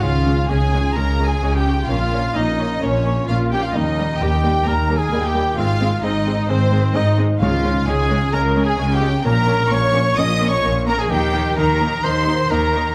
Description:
cinematic, heroic adventure film score; 130 BPM; 4/4; straight; Db lydian; A4 = 440 Hz
clear symphonic violin section; melody; 0.0-12.9 s; C5 to Eb6; -27 LUFS; equal
warm studio violin section; second line; 0.0-12.9 s; C4 to Eb5; -29 LUFS; equal
clear symphonic viola section; accompaniment; 0.0-12.8 s; G3 to Eb4; -29 LUFS; equal
concert harp; arpeggios; 0.0-12.9 s; Ab2 to F5; -29 LUFS; equal
clear trumpet; stabs; 0.0-12.9 s; C4 to Eb5; -26 LUFS; equal
clear symphonic double bass section; bass; 0.0-12.9 s; Ab1 to Eb2; -24 LUFS; equal
rich chamber cello section; bass; 0.0-12.9 s; Eb2 to Eb3; -25 LUFS; equal
timpani; percussion; 7.4-8.1 s; Db3; -28 LUFS; equal
moderate scoring stage reverb, RT60 1.8 s; -18 LUFS; mono
0.0-12.9 A section
0.0 Db; 1.9 Bbm; 3.7 Eb; 5.6 Ab; 7.4 Db; 9.3 Bbm; 11.1 Eb

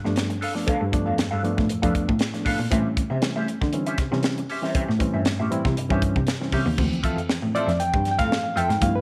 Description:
funk; 118 BPM; 4/4; straight; D dorian; A4 = 440 Hz
vintage hollow-body jazz guitar; accompaniment; 0.0-8.7 s; C4 to F5; -33 LUFS; equal; wah
reed electric piano; stabs; 0.0-9.0 s; E3 to G5; -29 LUFS; equal; fast tremolo
rich cello; bass; 0.1-8.9 s; D2 to A3; -28 LUFS; equal
crisp fusion drum kit; drums; 0.1-8.9 s; crash cymbal, hi-hat, kick drum, snare drum; -28 LUFS; equal
warm horn section; second line; 7.5-7.7 s; A4 to E5; -36 LUFS; equal
light reverb, small room ambience; -23 LUFS; mono
0.0-6.8 A section; 6.8-9.0 B section
reed electric piano solo 6.8-9.0
0.0 G9; 2.7 A7#9; 6.8 Dm9

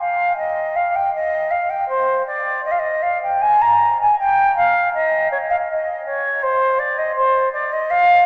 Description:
classical, baroque-style fantasia for unaccompanied flute; 80 BPM; 4/4; rubato; A4 = 443 Hz
mellow concert flute; solo; 0.0-8.3 s; C5 to Bb5; -18 LUFS; equal
wet cathedral reverb, RT60 6.8 s; recorded in a church or concert hall, small speaker sound; -18 LUFS; mono
0.0-8.3 A section

